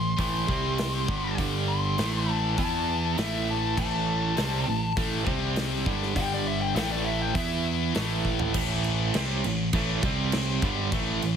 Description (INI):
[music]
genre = hard rock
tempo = 101 BPM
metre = 4/4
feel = straight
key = A minor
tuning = A4 = 444 Hz
[part]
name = bluesy overdriven lead guitar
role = melody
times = 0.0-7.6 s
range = D5 to C6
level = -32 LUFS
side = left 2 dB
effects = distortion
[part]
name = heavy high-gain guitar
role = riff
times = 0.0-11.4 s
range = G2 to E4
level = -31 LUFS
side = left 12 dB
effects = distortion
[part]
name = overdriven semi-hollow guitar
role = riff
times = 0.0-11.4 s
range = G2 to E4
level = -31 LUFS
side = right 10 dB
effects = tremolo
[part]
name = overdriven semi-hollow guitar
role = riff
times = 0.0-8.5 s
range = G2 to E4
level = -33 LUFS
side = equal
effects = none
[part]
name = picked electric bass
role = bass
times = 0.0-11.4 s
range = G1 to E2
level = -30 LUFS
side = equal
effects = none
[part]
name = big rock drum kit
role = drums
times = 0.2-11.4 s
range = crash cymbal, hi-hat, kick drum, snare drum, toms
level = -32 LUFS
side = equal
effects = none
[sound]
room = light reverb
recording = heavily compressed radio sound, multiband compression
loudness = -24 LUFS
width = side -8 dB against mid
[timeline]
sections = 0.0-8.5 A section; 8.5-11.4 B section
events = lead electric guitar solo 0.0-8.5; drum fill 8.2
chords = 0.5 C5; 1.1 G5; 2.0 Am; 2.6 E5; 3.2 Am; 5.3 C5; 5.9 G5; 6.8 A5; 7.4 E5; 8.0 A5; 8.5 Am; 10.0 C5; 10.6 A5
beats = 0.19 0.79 | 1.39 1.99 2.59 3.18 | 3.78 4.38 4.97 5.57 | 6.17 6.76 7.36 7.95 | 8.55 9.14 9.73 10.33 | 10.92